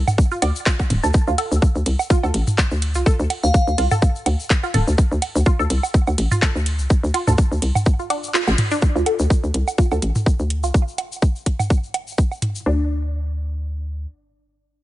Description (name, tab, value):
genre	minimal techno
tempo	125 BPM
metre	4/4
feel	swing 55% on 16ths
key	D minor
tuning	A4 = 443 Hz
part	hollow knocking FM bass	bass	0.0-14.1 s	D1 to D2	-20 LUFS	equal	sidechain pumping
part	electronic toms and woodblock	percussion	0.1-12.5 s	none	-22 LUFS	right 2 dB	overdrive
part	tube shaker	percussion	0.1-12.6 s	none	-34 LUFS	left 4 dB	none
part	electronic kick drum	drums	0.2-12.3 s	none	-16 LUFS	equal	overdrive
part	resonant blip pluck	riff	0.3-12.9 s	D4 to D5	-26 LUFS	right 1 dB	phaser, sidechain pumping, tape echo
part	booming analog drum machine	drums	0.4-12.5 s	handclaps, hi-hat, ride cymbal	-25 LUFS	equal	none
part	glassy synth bell	melody	3.4-3.9 s	F5	-24 LUFS	left 2 dB	chorus, tape echo
room	little or no reverb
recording	nothing above 10.3 kHz, faint mains hum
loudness	-17 LUFS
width	side -15 dB against mid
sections	0.0-8.8 A section; 8.8-12.7 B section; 12.7-14.8 C section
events	drop 0.0-8.8; kick drops out 8.3-8.8; band accent 8.3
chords	0.0 Dm; 12.7 N.C.